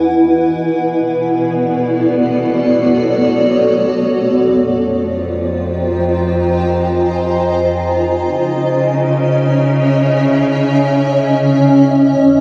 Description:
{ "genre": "ambient", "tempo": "free time", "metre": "none", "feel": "none", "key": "unclear", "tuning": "A4 = 440 Hz", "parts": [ { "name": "granular cloud pad", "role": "sustained chords", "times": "0.0-12.4 s", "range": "B3 to Bb5", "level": "-15 LUFS", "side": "equal", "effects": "built-in reverb, cassette tape" }, { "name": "clear studio cello section", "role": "bass", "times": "0.0-12.4 s", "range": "E2 to Db3", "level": "-22 LUFS", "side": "equal", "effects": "none" } ], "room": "wet lush hall reverb, RT60 2.4 s", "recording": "home recording on cassette, small room ambience", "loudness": "-14 LUFS", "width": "mono", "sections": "0.0-12.4 A section", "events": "fade-in on cello section 0.0-12.4", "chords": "0.0 Emaj7; 0.6 Bm9; 4.5 Fm11; 8.3 Dbmadd9" }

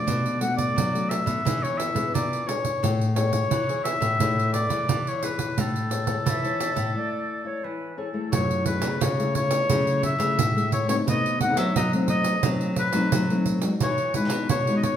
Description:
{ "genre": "samba and choro", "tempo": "87 BPM", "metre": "4/4", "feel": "straight", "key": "A major, F# minor from 8.3 s", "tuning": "A4 = 440 Hz", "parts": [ { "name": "clear oboe", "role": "melody", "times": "0.0-15.0 s", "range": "A4 to F#5", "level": "-26 LUFS", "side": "left 1 dB", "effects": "none" }, { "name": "nylon-string guitar", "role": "accompaniment", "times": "0.0-15.0 s", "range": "B2 to C#5", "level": "-29 LUFS", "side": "left 3 dB", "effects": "none" }, { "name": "nylon-string guitar", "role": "bass", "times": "0.1-15.0 s", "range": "F#2 to F#3", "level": "-28 LUFS", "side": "left 1 dB", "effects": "none" }, { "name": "pandeiro", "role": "percussion", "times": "0.1-15.0 s", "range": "none", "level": "-27 LUFS", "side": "right 4 dB", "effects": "none" }, { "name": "silver concert flute", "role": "second line", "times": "6.3-8.3 s", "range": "A4 to E5", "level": "-33 LUFS", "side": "right 2 dB", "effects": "none" } ], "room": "wet large studio reverb, RT60 1.3 s", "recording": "band playing live in one room", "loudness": "-22 LUFS", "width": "side -10 dB against mid", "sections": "0.0-8.3 A section; 8.3-15.0 B section", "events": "break 7.0-8.3", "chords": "0.1 Bm7; 1.5 E7; 2.8 Amaj7; 8.3 F#m9; 11.1 B7b9; 13.8 Emaj9" }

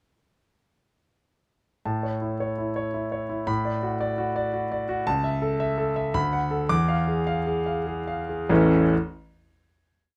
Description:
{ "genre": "classical, virtuoso piano study", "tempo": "92-115 BPM", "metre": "3/4", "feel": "rubato", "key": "A major", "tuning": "A4 = 440 Hz", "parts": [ { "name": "warm concert grand piano", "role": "solo", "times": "1.9-8.9 s", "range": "A1 to D6", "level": "-25 LUFS", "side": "equal", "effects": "none" } ], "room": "light reverb", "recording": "none", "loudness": "-25 LUFS", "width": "mono", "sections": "1.9-8.5 A section; 8.5-10.2 final chord", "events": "slowing down 4.3-8.5", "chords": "1.9 A; 3.5 Bm/A; 5.1 A/C#; 6.1 Bm7/D; 6.7 E7b9; 8.5 A" }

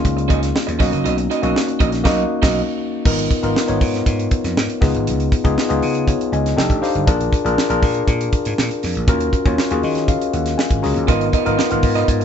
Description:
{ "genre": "polished 1980s jazz-funk pop", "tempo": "120 BPM", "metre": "4/4", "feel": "straight", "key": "G# dorian", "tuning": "A4 = 440 Hz", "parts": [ { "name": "tine electric piano", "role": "accompaniment", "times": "0.0-12.2 s", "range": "A#3 to C#6", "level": "-19 LUFS", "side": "left 3 dB", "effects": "tube saturation" }, { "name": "electric guitar through a small old amp", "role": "riff", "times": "0.0-2.6, 11.1-12.2 s", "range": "B3 to D#5", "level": "-22 LUFS", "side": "right 8 dB", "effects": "none" }, { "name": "vintage slap bass", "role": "bass", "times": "0.0-12.2 s", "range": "F1 to D#3", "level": "-22 LUFS", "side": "right 1 dB", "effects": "none" }, { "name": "tight funk drum kit", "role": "drums", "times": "0.0-12.2 s", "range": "crash cymbal, hi-hat, kick drum, snare drum", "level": "-19 LUFS", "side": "right 1 dB", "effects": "none" } ], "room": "light reverb", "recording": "band playing live in one room, nothing above 7.9 kHz", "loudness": "-16 LUFS", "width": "side -8 dB against mid", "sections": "0.0-3.1 A section; 3.1-12.2 B section", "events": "band accent 2.1-3.1; tine electric piano fill 6.1-7.1, 9.6-11.1", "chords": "0.0 C#69; 0.8 Bmaj7; 3.1 G#m69; 4.8 C#9; 6.6 F13; 7.1 A#7; 9.1 D#m9; 11.1 G#m69" }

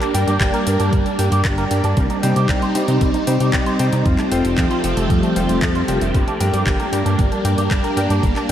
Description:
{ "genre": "italo disco", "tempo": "115 BPM", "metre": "4/4", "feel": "straight", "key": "G minor", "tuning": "A4 = 437 Hz", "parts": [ { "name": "phased string machine", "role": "sustained chords", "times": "0.0-8.5 s", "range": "F3 to G4", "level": "-20 LUFS", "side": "equal", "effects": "ensemble chorus, phaser" }, { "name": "electric guitar with an envelope filter", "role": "arpeggios", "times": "0.0-8.5 s", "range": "F3 to C5", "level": "-26 LUFS", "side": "right 2 dB", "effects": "ensemble chorus, diffuse ambient delay" }, { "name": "house drum kit", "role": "drums", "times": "0.0-8.5 s", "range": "handclaps, hi-hat", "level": "-27 LUFS", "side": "equal", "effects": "studio reverb" }, { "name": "clear electric grand piano", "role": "stabs", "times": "0.1-8.5 s", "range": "D4 to G5", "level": "-25 LUFS", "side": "left 2 dB", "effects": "analog chorus, diffuse ambient delay" }, { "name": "chorused synth bass", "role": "bass", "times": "0.1-8.5 s", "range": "F1 to C3", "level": "-21 LUFS", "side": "equal", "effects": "tube saturation" }, { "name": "electronic kick drum", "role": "drums", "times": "0.4-8.3 s", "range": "none", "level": "-20 LUFS", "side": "equal", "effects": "studio reverb" } ], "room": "wet cathedral reverb, RT60 6.0 s", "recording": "dreamy mix soaked in reverb, vinyl crackle", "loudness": "-15 LUFS", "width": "side -10 dB against mid", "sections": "0.0-8.5 A section", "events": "none", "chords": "0.0 Gm; 2.0 Cm; 4.1 Fadd9; 6.1 Gm" }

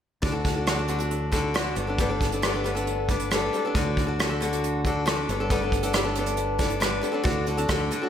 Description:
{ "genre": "folk rock and heartland rock", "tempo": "137 BPM", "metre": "4/4", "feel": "straight", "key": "D major", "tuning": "A4 = 438 Hz", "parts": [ { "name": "picked old ladder-braced acoustic guitar", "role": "accompaniment", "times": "0.2-8.1 s", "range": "D3 to A4", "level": "-26 LUFS", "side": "left 2 dB", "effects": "slapback echo" }, { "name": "fingered electric bass", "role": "bass", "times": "0.2-7.9 s", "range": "G1 to D2", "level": "-30 LUFS", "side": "equal", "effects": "none" }, { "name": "soft brush drum kit", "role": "drums", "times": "0.2-8.0 s", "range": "hi-hat, kick drum, rim click", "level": "-27 LUFS", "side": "right 1 dB", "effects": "none" } ], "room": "wet concert hall reverb, RT60 1.9 s", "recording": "big arena sound", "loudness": "-23 LUFS", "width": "side -9 dB against mid", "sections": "0.2-7.3 A section", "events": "none", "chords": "0.2 D; 1.8 Gadd9; 3.7 D; 5.3 Gadd9; 7.3 D" }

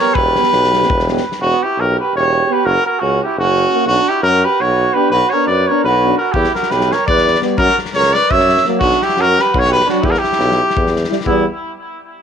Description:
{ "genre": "balkan folk, Balkan brass band", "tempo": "340 BPM (eighths)", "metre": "7/8", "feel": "straight", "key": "E dorian sharp4", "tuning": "A4 = 439 Hz", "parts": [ { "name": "clear trumpet", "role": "melody", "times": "0.0-11.5 s", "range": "E4 to E5", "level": "-15 LUFS", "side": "left 1 dB", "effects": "tape echo" }, { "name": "mellow flugelhorn", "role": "second line", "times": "0.0-11.4 s", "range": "B3 to C#5", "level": "-20 LUFS", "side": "right 12 dB", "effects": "none" }, { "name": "mellow French horn", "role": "accompaniment", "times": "0.0-11.4 s", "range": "A#3 to G4", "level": "-23 LUFS", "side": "left 16 dB", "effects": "none" }, { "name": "warm euphonium", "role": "accompaniment", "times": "0.0-11.5 s", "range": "F#3 to B3", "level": "-24 LUFS", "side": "right 14 dB", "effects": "none" }, { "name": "clear tuba", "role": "bass", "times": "0.2-11.5 s", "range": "E1 to F#2", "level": "-18 LUFS", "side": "left 1 dB", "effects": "tube saturation" }, { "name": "loose indie drum kit", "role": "percussion", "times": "0.2-1.4, 6.3-11.4 s", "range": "kick drum, snare drum", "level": "-22 LUFS", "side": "left 3 dB", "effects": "none" } ], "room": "light reverb, small room reverb", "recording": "1960s-style stereo with parts hard left and right", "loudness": "-12 LUFS", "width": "side -8 dB against mid", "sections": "0.0-1.4 A section; 1.4-11.3 B section", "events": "none", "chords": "0.0 Em; 2.6 F#; 3.9 Bm; 6.3 Em; 7.6 F#; 8.8 Bm; 10.0 Em" }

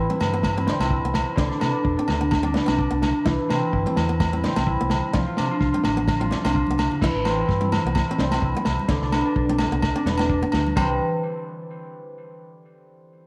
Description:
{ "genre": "highlife guitar band", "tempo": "128 BPM", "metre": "4/4", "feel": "swing 55% on 16ths", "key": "C major", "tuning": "A4 = 441 Hz", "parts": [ { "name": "concert harp", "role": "arpeggios", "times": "0.0-11.0 s", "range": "D3 to F4", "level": "-27 LUFS", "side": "equal", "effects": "tape echo" }, { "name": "fingered electric bass", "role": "bass", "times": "0.0-11.0 s", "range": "E1 to C3", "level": "-29 LUFS", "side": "equal", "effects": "none" }, { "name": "flamenco guitar", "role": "accompaniment", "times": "0.1-10.9 s", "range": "B3 to E4", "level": "-33 LUFS", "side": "equal", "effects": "none" }, { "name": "congas", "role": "percussion", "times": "0.1-11.0 s", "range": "none", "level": "-36 LUFS", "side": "equal", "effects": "none" }, { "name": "vintage drum kit", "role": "drums", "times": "0.2-10.9 s", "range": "crash cymbal, kick drum, snare drum", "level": "-29 LUFS", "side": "equal", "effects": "none" }, { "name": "agogo bells", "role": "percussion", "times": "0.2-10.9 s", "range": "none", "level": "-32 LUFS", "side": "equal", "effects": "none" } ], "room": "moderate echo chamber reverb, RT60 1.6 s, studio reverb", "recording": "none", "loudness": "-22 LUFS", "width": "mono", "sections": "0.0-7.0 A section; 7.0-10.8 B section; 10.8-12.6 C section", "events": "drum fill 6.6-7.0", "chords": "0.0 C; 1.4 Cmaj9/E; 3.3 Cmaj9/G; 5.1 Dm; 7.0 C; 8.9 Cmaj9; 10.8 C" }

